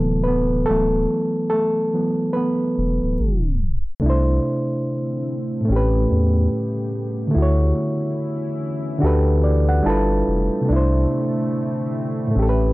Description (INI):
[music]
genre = hip hop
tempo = 72 BPM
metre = 4/4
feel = swing 59% on 16ths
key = D major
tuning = A4 = 440 Hz
[part]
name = reed electric piano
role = accompaniment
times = 0.0-12.7 s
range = A2 to A5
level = -20 LUFS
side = equal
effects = cassette tape
[part]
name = saturated sub bass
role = bass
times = 0.0-12.7 s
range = D1 to E2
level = -20 LUFS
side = equal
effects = none
[part]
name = deep dark ambient pad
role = sustained chords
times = 4.9-12.7 s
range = C#3 to G4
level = -29 LUFS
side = equal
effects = chorus, built-in reverb
[sound]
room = moderate small room reverb, RT60 0.5 s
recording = tape stop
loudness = -18 LUFS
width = side -20 dB against mid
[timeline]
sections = 0.0-4.0 A section; 4.0-12.7 B section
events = reed electric piano solo 0.0-4.0; tape stop 3.2-4.0; reed electric piano fill 9.0-10.7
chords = 0.0 D13; 0.7 D69; 4.0 C69; 5.7 A9; 7.3 Dmaj9; 9.0 Gmaj9/D; 9.8 G13; 10.7 C69